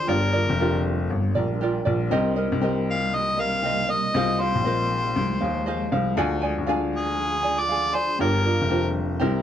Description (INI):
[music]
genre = acoustic pop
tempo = 118 BPM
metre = 4/4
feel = swing 60% on 16ths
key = unclear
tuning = A4 = 440 Hz
[part]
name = mellow harmonica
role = melody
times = 0.0-8.9 s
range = Ab4 to F5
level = -25 LUFS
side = left 1 dB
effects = none
[part]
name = felt-muted upright piano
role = accompaniment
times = 0.0-9.4 s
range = C4 to F5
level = -30 LUFS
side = left 4 dB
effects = none
[part]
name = tenor ukulele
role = accompaniment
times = 0.0-9.4 s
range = C4 to Ab5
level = -27 LUFS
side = right 4 dB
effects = none
[part]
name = granular cloud pad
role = sustained chords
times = 0.0-9.4 s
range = C3 to Bb4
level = -33 LUFS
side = right 2 dB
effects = built-in reverb
[part]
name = warm baby grand piano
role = bass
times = 0.1-9.4 s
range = F1 to Eb2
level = -25 LUFS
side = left 2 dB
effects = none
[sound]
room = light reverb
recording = none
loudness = -21 LUFS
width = side -10 dB against mid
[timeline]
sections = 0.0-9.4 A section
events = none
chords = 0.1 Gm7; 2.1 Cm7; 4.1 Fm7; 6.2 Ddim; 8.2 Gm7